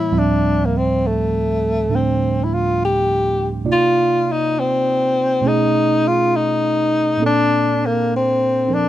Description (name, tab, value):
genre	jazz ballad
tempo	68 BPM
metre	4/4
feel	swing 66% on 8ths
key	D minor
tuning	A4 = 440 Hz
part	mellow tenor saxophone	melody	0.0-8.9 s	A3 to G4	-17 LUFS	left 2 dB	none
part	mellow tine electric piano	accompaniment	0.0-8.9 s	D2 to E5	-20 LUFS	right 4 dB	none
room	light reverb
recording	close, detailed microphones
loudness	-15 LUFS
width	side -13 dB against mid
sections	0.1-8.9 A section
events	none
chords	0.1 Dm11; 3.7 Cm11; 5.4 B13; 7.2 Bbmaj7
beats	| 0.12 1.01 1.90 2.78 | 3.67 4.55 5.44 6.32 | 7.21 8.09